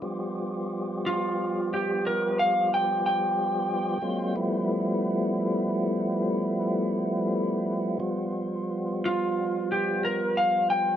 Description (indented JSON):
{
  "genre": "blues",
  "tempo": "60 BPM (dotted quarters)",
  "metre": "12/8",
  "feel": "straight",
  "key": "G mixolydian",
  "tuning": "A4 = 445 Hz",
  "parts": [
    { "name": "tonewheel organ", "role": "sustained chords", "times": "0.0-11.0 s", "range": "F3 to G4", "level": "-27 LUFS", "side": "equal", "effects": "slow rotary speaker" },
    { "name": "electric slide guitar", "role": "melody", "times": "1.1-11.0 s", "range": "F4 to G5", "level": "-25 LUFS", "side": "equal", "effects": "none" }
  ],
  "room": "light reverb",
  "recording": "none",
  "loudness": "-24 LUFS",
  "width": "side -10 dB against mid",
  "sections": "0.0-11.0 A section",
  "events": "electric slide guitar solo 0.0-11.0",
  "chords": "0.0 G13"
}